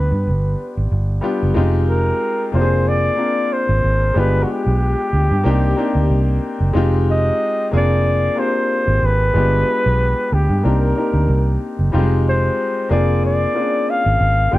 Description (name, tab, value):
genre	lush 1970s-style soul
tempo	92 BPM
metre	4/4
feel	swing 54% on 16ths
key	unclear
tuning	A4 = 440 Hz
part	mellow flugelhorn	melody	0.0-14.6 s	F#4 to G5	-20 LUFS	equal	none
part	dark concert grand piano	accompaniment	0.0-14.6 s	G3 to Bb4	-21 LUFS	left 2 dB	none
part	vintage muted fingered electric bass	bass	0.0-14.6 s	F1 to G2	-16 LUFS	right 1 dB	none
room	small room ambience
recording	none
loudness	-15 LUFS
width	side -16 dB against mid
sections	0.0-1.6 A section; 1.6-14.6 B section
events	none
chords	0.0 G7; 1.6 Fm9; 2.5 Bb9/F; 4.2 G7b9; 5.5 Cm9; 6.8 Fm9; 7.7 Bb9/F; 9.3 G7b9; 10.6 Cm9; 11.9 Fm9; 12.9 Bb9/F